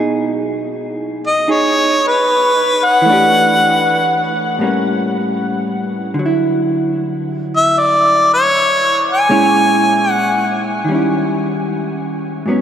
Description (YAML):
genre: jazz ballad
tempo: 77 BPM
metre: 4/4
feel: swing 69% on 8ths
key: unclear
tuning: A4 = 439 Hz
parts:
  - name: vintage hollow-body jazz guitar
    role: accompaniment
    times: 0.0-12.6 s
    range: G#2 to G#4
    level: -17 LUFS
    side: right 1 dB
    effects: none
  - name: warm harmonica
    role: melody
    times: 1.3-10.6 s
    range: B4 to G#5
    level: -13 LUFS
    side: left 1 dB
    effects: none
room: wet huge ambient reverb, RT60 8.1 s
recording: in a vast, echoing space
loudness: -12 LUFS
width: side -9 dB against mid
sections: 0.0-12.6 A section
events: none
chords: 0.0 B6; 3.1 Em11; 4.6 A7b9; 6.2 Dmaj9; 9.3 A#m7b5; 10.9 D#7b9